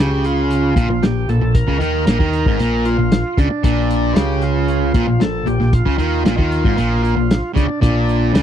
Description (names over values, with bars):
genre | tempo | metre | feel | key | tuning
classic rock | 115 BPM | 4/4 | straight | unclear | A4 = 440 Hz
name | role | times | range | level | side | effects
overdriven tonewheel organ | melody | 0.0-8.4 s | D4 to Bb4 | -22 LUFS | right 1 dB | slow rotary speaker
distorted electric guitar | riff | 0.0-8.4 s | Ab2 to Eb3 | -18 LUFS | equal | distortion
growling picked electric bass | bass | 0.0-8.4 s | Ab1 to Eb2 | -20 LUFS | equal | overdrive
vintage drum kit | drums | 0.2-8.4 s | hi-hat, kick drum, snare drum | -17 LUFS | equal | none
room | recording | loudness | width
little or no reverb | dry, close 1970s-style studio recording | -14 LUFS | side -10 dB against mid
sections
0.0-8.4 A section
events
none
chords
0.0 Bb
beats
0.50 1.02 | 1.55 2.07 2.59 3.12 | 3.64 4.16 4.69 5.21 | 5.73 6.25 6.78 7.30 | 7.82 8.34